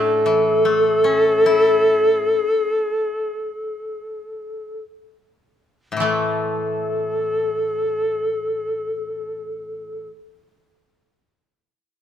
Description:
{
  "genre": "japanese traditional, Japanese chamber music",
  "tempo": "free time",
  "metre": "none",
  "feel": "none",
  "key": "A ryukyu",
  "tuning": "A4 = 436 Hz",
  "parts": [
    { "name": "bright reedy long shakuhachi", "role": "melody", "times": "0.0-10.1 s", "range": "A4", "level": "-19 LUFS", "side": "left 1 dB", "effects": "none" },
    { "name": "koto", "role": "second line", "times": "0.0-10.1 s", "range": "A3 to D4", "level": "-32 LUFS", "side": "right 7 dB", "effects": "none" },
    { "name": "koto", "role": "accompaniment", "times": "0.0-10.1 s", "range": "A2 to E4", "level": "-25 LUFS", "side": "left 5 dB", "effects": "none" }
  ],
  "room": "moderate scoring stage reverb, RT60 1.6 s",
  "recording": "close, detailed microphones",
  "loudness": "-17 LUFS",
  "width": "side -9 dB against mid",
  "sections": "0.0-6.0 A section; 6.0-10.7 B section",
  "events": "slowing down 0.0-6.0",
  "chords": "none"
}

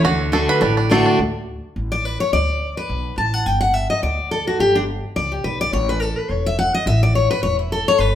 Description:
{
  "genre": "bluegrass",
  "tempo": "212 BPM",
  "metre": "4/4",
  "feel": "swing 56% on 8ths",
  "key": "D major",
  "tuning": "A4 = 440 Hz",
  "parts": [
    { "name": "bluegrass banjo", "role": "melody", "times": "0.0-1.2 s", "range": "A3 to B4", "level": "-20 LUFS", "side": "right 4 dB", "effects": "none" },
    { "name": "picked steel-string acoustic guitar", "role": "accompaniment", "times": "0.0-8.2 s", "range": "A2 to A5", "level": "-18 LUFS", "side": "left 2 dB", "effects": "none" },
    { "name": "upright bass", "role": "bass", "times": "0.0-8.2 s", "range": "E1 to D2", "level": "-22 LUFS", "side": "equal", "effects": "none" }
  ],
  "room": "wet large studio reverb, RT60 1.2 s",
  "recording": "band playing live in one room",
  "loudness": "-17 LUFS",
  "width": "side -10 dB against mid",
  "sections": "0.0-1.2 A section; 1.2-8.2 A section",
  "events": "five-string banjo solo 0.0-1.2; steel-string acoustic guitar solo 1.2-8.2",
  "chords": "0.1 D; 1.2 D5; 3.5 G; 5.7 A5"
}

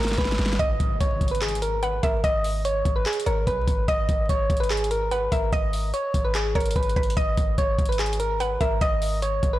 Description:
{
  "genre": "hip hop, trap",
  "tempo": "146 BPM",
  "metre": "4/4",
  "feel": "half-time",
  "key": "G# minor",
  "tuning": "A4 = 440 Hz",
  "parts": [
    { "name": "soft electric-piano-like synth keys", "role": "melody", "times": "0.0-9.6 s", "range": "G#4 to D#5", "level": "-26 LUFS", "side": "right 1 dB", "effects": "chorus, digital delay" },
    { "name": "clean 808-style bass", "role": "bass", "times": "0.0-9.6 s", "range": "G#1 to B1", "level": "-26 LUFS", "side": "equal", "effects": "none" },
    { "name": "trap drum kit", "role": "drums", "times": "0.0-9.5 s", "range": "handclaps, hi-hat, kick drum, snare drum", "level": "-26 LUFS", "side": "equal", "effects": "none" },
    { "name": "mallet-like synth pluck", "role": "second line", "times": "0.6-9.6 s", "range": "B4 to F#5", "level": "-32 LUFS", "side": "equal", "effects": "chorus, digital delay" },
    { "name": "impact", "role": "sound effects", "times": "0.6-2.2 s", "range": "none", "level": "-36 LUFS", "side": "left 1 dB", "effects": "none" }
  ],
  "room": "light reverb",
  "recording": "blown-out, overdriven recording, vinyl crackle, overdrive",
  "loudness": "-21 LUFS",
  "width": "side -15 dB against mid",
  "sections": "0.6-9.6 A section",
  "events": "drum fill 0.0-0.6; impact 0.6-2.2",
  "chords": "0.0 G#m"
}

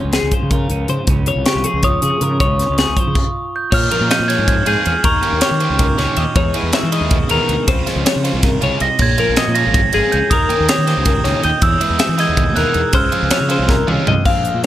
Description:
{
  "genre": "math rock and midwest emo",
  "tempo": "319 BPM (eighths)",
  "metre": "7/8",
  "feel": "straight",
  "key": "Db lydian",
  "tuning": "A4 = 440 Hz",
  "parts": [
    { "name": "twelve-string electric guitar", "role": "accompaniment", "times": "0.0-14.7 s", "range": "F2 to Ab4", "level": "-24 LUFS", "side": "right 6 dB", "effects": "lush chorus" },
    { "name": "twelve-string electric guitar", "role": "arpeggios", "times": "0.0-14.7 s", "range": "G4 to F5", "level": "-21 LUFS", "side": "left 6 dB", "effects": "none" },
    { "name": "fuzz fingered electric bass", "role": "bass", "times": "0.0-14.6 s", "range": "Ab1 to E3", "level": "-20 LUFS", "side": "equal", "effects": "overdrive" },
    { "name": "crisp fusion drum kit", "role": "drums", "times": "0.1-14.7 s", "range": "crash cymbal, hi-hat, kick drum, ride cymbal, snare drum, toms", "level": "-18 LUFS", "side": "equal", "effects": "none" },
    { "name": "glockenspiel with rubber mallets", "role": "melody", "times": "1.5-6.1, 8.8-14.0 s", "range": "Db6 to Bb6", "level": "-20 LUFS", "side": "right 2 dB", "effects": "none" },
    { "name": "biting overdriven guitar", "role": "riff", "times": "3.9-14.1 s", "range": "Db3 to G4", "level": "-23 LUFS", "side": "right 1 dB", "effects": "none" }
  ],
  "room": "little or no reverb",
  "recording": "none",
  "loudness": "-13 LUFS",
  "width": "side -13 dB against mid",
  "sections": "0.0-3.7 A section; 3.7-14.3 B section",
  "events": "stop 3.2-3.7; drum fill 13.7-14.3",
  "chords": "0.0 Dbmaj7; 3.7 Bbm7; 5.0 Eb7; 6.4 Emaj7; 7.7 Dbmaj7; 9.0 Bbm7; 10.3 Eb7; 11.6 Emaj7; 12.9 Dbmaj7"
}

